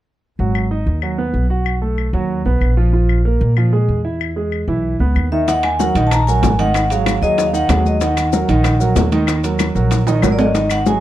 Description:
Afro-Cuban jazz; 189 BPM; 4/4; straight; Eb minor; A4 = 440 Hz
clear concert grand piano; accompaniment; 0.4-11.0 s; Eb3 to Gb5; -20 LUFS; right 4 dB
upright bass; bass; 0.4-11.0 s; Ab1 to Bb2; -17 LUFS; equal
claves; percussion; 0.6-10.9 s; -27 LUFS; left 15 dB
vibraphone with medium hard mallets; melody; 5.3-11.0 s; D5 to Bb5; -18 LUFS; left 1 dB
bongos; percussion; 5.5-11.0 s; -24 LUFS; left 8 dB
congas; percussion; 5.5-11.0 s; -24 LUFS; left 1 dB
maracas; percussion; 5.5-11.0 s; -33 LUFS; left 17 dB
timbales; percussion; 5.5-10.9 s; -26 LUFS; right 6 dB
studio reverb; dry, close 1970s-style studio recording; -14 LUFS; side -13 dB against mid
0.4-5.5 A section; 5.5-11.0 B section
drum fill 10.1-10.5
0.4 Abm7; 1.7 B7; 2.9 Bb5; 4.2 E; 5.5 Ebm; 6.7 Ab5; 8.0 Ebm

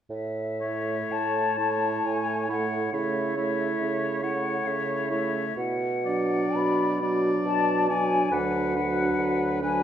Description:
classical, slow romantic movement for wind quintet; 57-71 BPM; 3/4; rubato; A major; A4 = 439 Hz
concert flute; melody; 0.1-9.8 s; E5 to B5; -29 LUFS; left 4 dB
mellow bassoon; bass; 0.1-9.8 s; D2 to C#3; -30 LUFS; right 2 dB
clear oboe; second line; 0.6-9.8 s; B4 to D5; -31 LUFS; left 3 dB
clear clarinet; accompaniment; 0.6-9.8 s; D4 to E4; -31 LUFS; right 5 dB
mellow French horn; accompaniment; 0.6-9.8 s; F#3 to A3; -31 LUFS; equal
wet recital hall reverb, RT60 1.6 s; -24 LUFS; side -9 dB against mid
0.1-9.8 A section
0.1 A; 2.9 A/C#; 5.6 Bm; 8.3 Bm/D

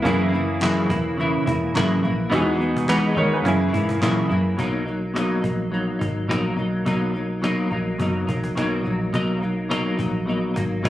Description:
indie pop, bedroom pop; 106 BPM; 4/4; swing 55% on 16ths; B major; A4 = 439 Hz
bright upright piano; accompaniment; 0.0-4.6 s; A#3 to C#5; -25 LUFS; right 2 dB; cassette tape
semi-hollow electric guitar; accompaniment; 0.0-10.9 s; F#2 to E4; -22 LUFS; left 1 dB; analog chorus, vibrato effect
vintage muted fingered electric bass; bass; 0.1-10.9 s; E1 to A#2; -26 LUFS; equal
cajon; drums; 0.1-10.9 s; -31 LUFS; equal
group handclap; percussion; 0.6-4.2 s; -36 LUFS; right 1 dB
light reverb, studio reverb; recorded on a phone in the room, compression; -20 LUFS; side -14 dB against mid
0.0-4.6 A section; 4.6-10.9 B section
0.1 F#7; 2.3 Emaj7; 3.5 F#7; 4.6 Bmaj7; 9.1 G#m9

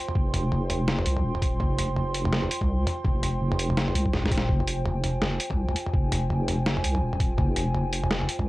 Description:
half-time drum and bass; 166 BPM; 4/4; swing 59% on 16ths, half-time; F minor; A4 = 445 Hz
dark analog pad; sustained chords; 0.0-8.5 s; F4 to C6; -32 LUFS; right 1 dB; chorus, sidechain pumping, cassette tape
boom bap sampler-style drum kit; drums; 0.1-8.5 s; hi-hat, snare drum, toms; -29 LUFS; equal; cassette tape
deep soft wobble bass; bass; 0.2-8.5 s; Eb1 to C2; -26 LUFS; equal; chorus
electronic kick drum; drums; 0.2-8.5 s; -26 LUFS; equal; cassette tape
little or no reverb; home recording on cassette; -23 LUFS; side -18 dB against mid
0.0-8.5 A section
drum fill 4.1-4.5
0.0 Fmadd9

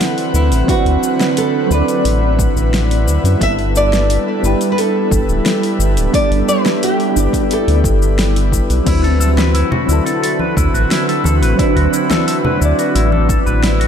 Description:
sunset chillout; 88 BPM; 4/4; straight; G major; A4 = 441 Hz
nylon-string guitar; melody; 0.0-8.5 s; E4 to E5; -20 LUFS; right 1 dB; digital delay
soft electric-piano-like synth keys; accompaniment; 0.0-13.9 s; E3 to D5; -19 LUFS; moving between left 5 dB and right 5 dB; chorus, phaser, auto-pan, digital delay
airy breathy pad; sustained chords; 0.0-13.9 s; D3 to F#5; -20 LUFS; left 1 dB; chorus
deep house drum kit; drums; 0.0-13.9 s; cabasa, crash cymbal, hi-hat, snare drum; -22 LUFS; equal; overdrive
round analog bass; bass; 0.3-13.9 s; D1 to F#2; -14 LUFS; equal; tube saturation
electronic kick drum; drums; 0.7-13.4 s; -18 LUFS; equal; overdrive
electric guitar with an envelope filter; arpeggios; 8.9-13.9 s; E4 to B4; -21 LUFS; left 1 dB; digital delay
congas; percussion; 9.4-13.3 s; -23 LUFS; left 3 dB
moderate lush hall reverb, RT60 2.5 s; dark, warm production; -12 LUFS; side -8 dB against mid
0.0-13.9 A section
0.0 D13; 3.4 G69; 8.9 D13

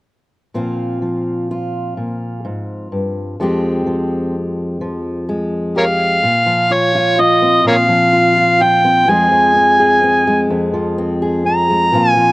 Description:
acoustic folk-pop ballad; 42 BPM (dotted quarters); 6/8; straight; A4 = 440 Hz
fingerpicked steel-string acoustic guitar; accompaniment; 0.5-12.3 s; F2 to Ab4; -17 LUFS; equal; slapback echo
overdriven harmonica; melody; 5.8-12.3 s; Bb4 to Bb5; -11 LUFS; equal
little or no reverb; recorded outdoors, with no room sound; -12 LUFS; side -20 dB against mid
0.5-6.2 A section; 6.2-12.3 B section
0.5 Bbsus2; 3.4 Fmadd9; 6.2 Bbsus2; 9.1 Fm

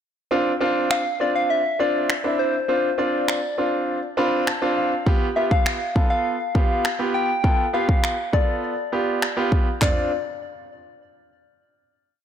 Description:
dance-pop; 101 BPM; 4/4; straight; D dorian; A4 = 440 Hz
clear grand piano; accompaniment; 0.3-10.1 s; B3 to B5; -23 LUFS; right 2 dB; sidechain pumping
soft struck synth lead; melody; 0.9-10.1 s; C5 to G5; -24 LUFS; left 2 dB; chorus, ping-pong delay
pop drum kit; drums; 0.9-10.0 s; finger snaps, handclaps, kick drum, toms; -22 LUFS; equal; soft clipping on snare
light reverb; blown-out, overdriven recording, overdrive; -19 LUFS; side -9 dB against mid
0.3-9.8 verse; 9.8-12.2 final chord
grand piano fill 3.9-5.1
0.3 Dm7; 5.1 G7; 9.8 Dm7

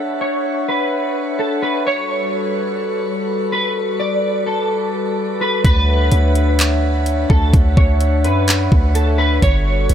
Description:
hip hop, atmospheric cloud-rap; 127 BPM; 4/4; half-time; D major; A4 = 441 Hz
glass harmonica; sustained chords; 0.0-9.9 s; G3 to F#5; -21 LUFS; left 1 dB; sidechain pumping, low-pass filter
electric guitar at the edge of break-up; melody; 0.2-9.9 s; A4 to D5; -21 LUFS; equal; ensemble chorus, low-pass filter, ping-pong delay
warm 808-style bass; bass; 5.6-9.9 s; G1 to F#2; -15 LUFS; equal
trap drum kit; drums; 5.6-9.9 s; handclaps, hi-hat, kick drum; -16 LUFS; equal
light reverb, digital ambience; -14 LUFS; side -9 dB against mid
0.0-5.6 A section; 5.6-9.9 B section
0.0 Dmaj9; 1.9 Gmaj9; 5.6 Dmaj9; 9.4 Gmaj9

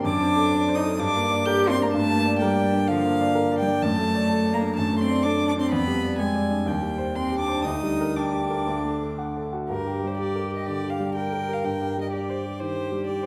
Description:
quick classical-period movement for piano trio; 126 BPM; 4/4; rubato; G minor; A4 = 440 Hz
warm cello; second line; 0.0-13.3 s; F3 to Bb4; -29 LUFS; equal
warm grand piano; accompaniment; 0.0-13.3 s; D2 to G5; -27 LUFS; equal
warm violin; melody; 0.1-13.3 s; Bb4 to G6; -32 LUFS; equal
wet recital hall reverb, RT60 1.5 s; -24 LUFS; mono
0.0-9.7 A section; 9.7-13.3 B section
0.1 D7/F#; 1.0 Gm; 3.8 D/F#; 5.7 G7/F; 6.7 Cm/Eb; 7.7 Gm/D; 8.7 D; 9.7 Gm; 11.6 Cm/G

